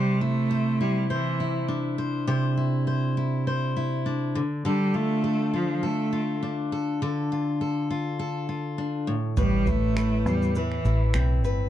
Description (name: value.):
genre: acoustic pop.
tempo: 102 BPM.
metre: 4/4.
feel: swing 55% on 16ths.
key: C major.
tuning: A4 = 440 Hz.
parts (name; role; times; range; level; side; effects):
clear cello; melody; 0.0-11.2 s; E3 to A3; -27 LUFS; right 1 dB; tape echo.
picked steel-string acoustic guitar; accompaniment; 0.0-11.7 s; A2 to C5; -26 LUFS; left 1 dB; none.
vintage muted fingered electric bass; bass; 9.4-11.7 s; G1 to E2; -24 LUFS; equal; none.
jazz brush drum kit; drums; 9.4-11.6 s; finger snaps, kick drum, shaker; -30 LUFS; right 2 dB; none.
room: light reverb.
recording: dark, warm production.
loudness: -23 LUFS.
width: side -12 dB against mid.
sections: 0.0-11.7 A section.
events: none.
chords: 0.0 Cadd9; 4.4 Dm; 9.1 Amadd9.